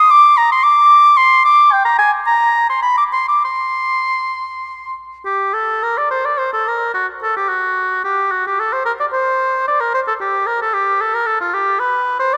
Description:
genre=classical, baroque-style fantasia for unaccompanied oboe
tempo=95-117 BPM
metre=3/4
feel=rubato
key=C minor, G minor from 5.3 s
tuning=A4 = 440 Hz
part: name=warm oboe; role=solo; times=0.0-12.4 s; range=F4 to Eb6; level=-15 LUFS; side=equal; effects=none
room=wet church reverb, RT60 3.3 s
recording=none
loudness=-15 LUFS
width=mono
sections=0.0-5.3 A section; 5.3-12.4 A section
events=none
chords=none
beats=| 0.10 0.64 1.17 | 1.72 2.25 2.82 | 3.44 4.06 4.66 | 5.26 5.83 6.38 | 6.94 7.49 8.04 | 8.58 9.13 9.67 | 10.20 10.74 11.27 | 11.79 12.32

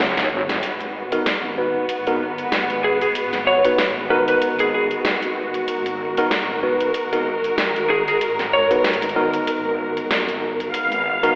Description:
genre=glitch hop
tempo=95 BPM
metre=4/4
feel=swing 56% on 16ths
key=G# minor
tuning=A4 = 440 Hz
part: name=warm symphonic string section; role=sustained chords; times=0.0-11.4 s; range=G#3 to E#5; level=-23 LUFS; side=equal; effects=none
part: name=wobble bass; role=bass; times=0.0-11.4 s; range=F#1 to D#2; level=-31 LUFS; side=equal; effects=chorus
part: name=dubstep drum kit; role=drums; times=0.0-11.3 s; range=hi-hat, snare drum, toms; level=-23 LUFS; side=equal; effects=none
part: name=tine electric piano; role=stabs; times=1.1-11.4 s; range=B3 to B4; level=-22 LUFS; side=equal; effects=vintage 12-bit sampler grit, low-pass filter, digital delay
part: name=lightly driven lead guitar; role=melody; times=2.8-8.7 s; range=G#4 to C#5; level=-19 LUFS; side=equal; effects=digital delay
room=wet plate reverb, RT60 2.1 s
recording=played on a big sound system in a bare room, stone room reverb, vinyl crackle, telephone sound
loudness=-17 LUFS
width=side -30 dB against mid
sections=0.6-11.4 A section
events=drum fill 0.0-0.6; band accent 0.5-0.8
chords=0.0 G#7(no3); 0.6 G#m7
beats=0.00 | 0.63 1.26 1.90 2.53 | 3.16 3.79 4.42 5.05 | 5.69 6.32 6.95 7.58 | 8.21 8.84 9.48 10.11 | 10.74

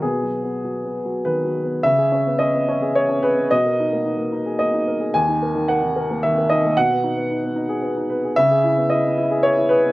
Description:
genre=neoclassical minimalist piano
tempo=96-114 BPM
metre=3/4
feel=rubato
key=C# dorian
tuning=A4 = 440 Hz
part: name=warm upright piano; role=solo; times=0.0-9.9 s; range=D#2 to G#5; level=-17 LUFS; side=equal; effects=none
room=little or no reverb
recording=recorded outdoors, with no room sound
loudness=-17 LUFS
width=side -18 dB against mid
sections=0.0-1.8 A section; 1.8-9.9 B section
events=none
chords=0.0 B6; 1.8 C#m7; 3.5 G#madd9/B; 5.1 D#m; 6.8 B6; 8.4 C#m7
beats=| 0.02 0.64 1.24 | 1.83 2.41 2.96 | 3.52 4.06 4.59 | 5.13 5.69 6.23 | 6.76 7.29 7.82 | 8.36 8.90 9.44

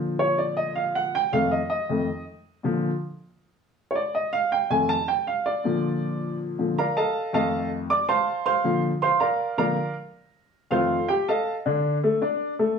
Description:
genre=jazz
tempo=160 BPM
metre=4/4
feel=straight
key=Bb major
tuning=A4 = 441 Hz
part: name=warm baby grand piano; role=solo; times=0.0-12.8 s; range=F2 to D6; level=-22 LUFS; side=equal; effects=none
room=moderate studio reverb, RT60 0.8 s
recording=small room reverb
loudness=-22 LUFS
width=side -6 dB against mid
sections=0.0-11.7 A section; 11.7-12.8 B section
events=grand piano solo 0.0-11.7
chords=0.0 Bb; 1.1 F7; 2.6 Bb; 4.1 F7; 5.6 Bb; 7.1 F7; 8.6 Bbadd9; 10.2 F7; 11.7 Asus4/D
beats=0.01 0.39 0.76 | 1.14 1.51 1.89 2.26 | 2.64 3.02 3.39 3.77 | 4.14 4.52 4.89 5.27 | 5.64 6.02 6.39 6.77 | 7.14 7.52 7.90 8.27 | 8.65 9.02 9.40 9.77 | 10.15 10.53 10.90 11.28 | 11.65 12.03 12.41 12.78

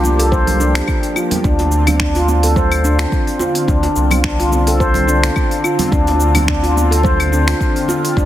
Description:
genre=organic downtempo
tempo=107 BPM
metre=4/4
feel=swing 55% on 16ths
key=D minor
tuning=A4 = 443 Hz
part: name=warm analog pad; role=sustained chords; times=0.0-8.3 s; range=D3 to G4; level=-22 LUFS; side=equal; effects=chorus, sidechain pumping
part: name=handpan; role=arpeggios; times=0.0-8.3 s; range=D4 to C5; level=-17 LUFS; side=left 1 dB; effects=digital delay
part: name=round analog bass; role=bass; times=0.0-8.3 s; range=C2 to D2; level=-16 LUFS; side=equal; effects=tube saturation, sidechain pumping
part: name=deep house drum kit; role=drums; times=0.0-8.3 s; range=claves, finger snaps, hi-hat, shaker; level=-22 LUFS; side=left 1 dB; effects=soft clipping on snare
part: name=congas and bongos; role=percussion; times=0.0-8.0 s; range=none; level=-25 LUFS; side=right 4 dB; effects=none
part: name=electronic kick drum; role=drums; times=0.3-8.3 s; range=none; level=-18 LUFS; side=equal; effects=none
room=light reverb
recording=dense, heavily limited modern master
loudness=-12 LUFS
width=side -12 dB against mid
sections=0.0-8.3 A section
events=none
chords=0.0 Gm7; 1.4 Dm7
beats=0.32 0.88 | 1.44 2.00 2.56 3.12 | 3.68 4.24 4.80 5.37 | 5.93 6.49 7.05 7.61 | 8.17

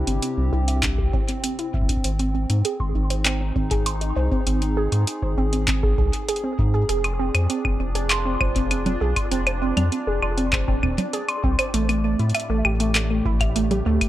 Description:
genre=IDM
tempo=99 BPM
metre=4/4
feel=straight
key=unclear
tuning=A4 = 440 Hz
part: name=hollow soft pad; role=sustained chords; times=0.0-14.1 s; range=A2 to B4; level=-30 LUFS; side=equal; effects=chorus
part: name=round analog bass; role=bass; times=0.0-14.0 s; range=F1 to A2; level=-23 LUFS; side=equal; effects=none
part: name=warbly dusty pluck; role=arpeggios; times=0.1-14.1 s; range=A3 to C6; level=-26 LUFS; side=right 2 dB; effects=chorus, phaser, dub echo
part: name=booming analog drum machine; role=drums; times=0.1-14.1 s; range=claves, congas, handclaps, hi-hat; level=-24 LUFS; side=equal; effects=small room ambience, tape echo
part: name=electronic kick drum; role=drums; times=0.8-14.1 s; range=none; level=-24 LUFS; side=equal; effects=small room ambience
part: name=pulsing gated texture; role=texture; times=6.9-14.1 s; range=D4 to D5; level=-33 LUFS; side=left 1 dB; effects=chorus, built-in reverb, sidechain pumping
room=light reverb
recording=echo-heavy mix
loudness=-20 LUFS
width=side -14 dB against mid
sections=0.0-14.1 A section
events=filter sweep on synth pluck 0.0-14.1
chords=0.0 Cadd9; 2.0 Ab; 6.9 Fm; 11.7 Am7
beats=0.23 0.83 1.44 | 2.04 2.65 3.25 3.86 | 4.47 5.07 5.68 6.29 | 6.89 7.50 8.10 8.71 | 9.32 9.92 10.53 11.13 | 11.74 12.35 12.95 13.56

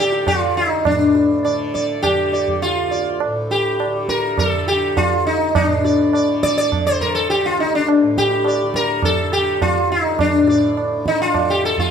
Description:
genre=indian classical, Hindustani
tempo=103 BPM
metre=4/4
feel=straight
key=D raga bhairavi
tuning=A4 = 440 Hz
part: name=sitar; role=melody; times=0.0-11.9 s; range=D4 to D5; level=-16 LUFS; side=left 1 dB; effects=none
part: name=tanpura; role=drone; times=0.0-11.9 s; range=D2 to D3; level=-28 LUFS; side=left 1 dB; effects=none
part: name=tabla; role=percussion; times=0.1-11.9 s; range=none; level=-23 LUFS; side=right 4 dB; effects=none
room=moderate recital hall reverb, RT60 1.4 s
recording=none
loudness=-15 LUFS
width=side -7 dB against mid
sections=0.9-11.9 A section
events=none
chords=none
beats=0.27 | 0.85 1.45 2.03 2.62 | 3.21 3.79 4.38 4.96 | 5.55 6.13 6.71 7.29 | 7.88 8.46 9.03 9.61 | 10.19 10.77 11.34

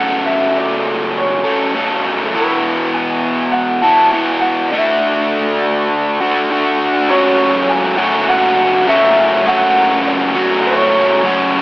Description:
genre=rock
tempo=101 BPM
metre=4/4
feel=straight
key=unclear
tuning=A4 = 441 Hz
part: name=electric guitar through a small old amp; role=melody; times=0.0-11.5 s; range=B4 to A5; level=-15 LUFS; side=equal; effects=slapback echo
part: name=overdriven electric guitar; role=riff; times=0.0-11.6 s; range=E2 to A4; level=-13 LUFS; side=equal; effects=wide subtle chorus
room=wet lush hall reverb, RT60 1.8 s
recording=AM radio sound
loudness=-12 LUFS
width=side -21 dB against mid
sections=0.0-7.1 A section; 7.1-11.6 B section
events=none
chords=0.0 F#m; 2.3 Esus2; 4.7 Dadd9; 7.1 F#m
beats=0.56 1.15 1.75 | 2.35 2.94 3.54 4.13 | 4.73 5.32 5.92 6.51 | 7.11 7.70 8.29 8.88 | 9.47 10.06 10.65 11.24

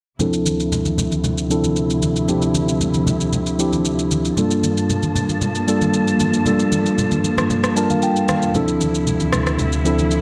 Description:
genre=amapiano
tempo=115 BPM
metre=4/4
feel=straight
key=D minor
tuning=A4 = 440 Hz
part: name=mellow tine electric piano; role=accompaniment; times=0.2-10.2 s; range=F3 to A5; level=-21 LUFS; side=equal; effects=low-pass filter
part: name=warm studio string section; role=sustained chords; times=0.2-10.2 s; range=D2 to A5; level=-25 LUFS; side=equal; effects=low-pass filter
part: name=electronic shaker and rim click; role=drums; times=0.2-10.2 s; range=none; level=-28 LUFS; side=equal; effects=none
part: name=congas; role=percussion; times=0.2-10.1 s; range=none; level=-27 LUFS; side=equal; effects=none
room=light reverb, small room ambience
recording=dark, warm production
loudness=-19 LUFS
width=mono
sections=0.2-10.2 A section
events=filter sweep 0.2-10.2; tine electric piano fill 7.5-8.5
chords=0.2 Dm9; 4.4 Gm9; 8.5 Dm9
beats=| 0.20 0.72 1.24 1.76 | 2.29 2.81 3.33 3.85 | 4.37 4.89 5.42 5.94 | 6.46 6.98 7.50 8.03 | 8.55 9.07 9.59 10.11

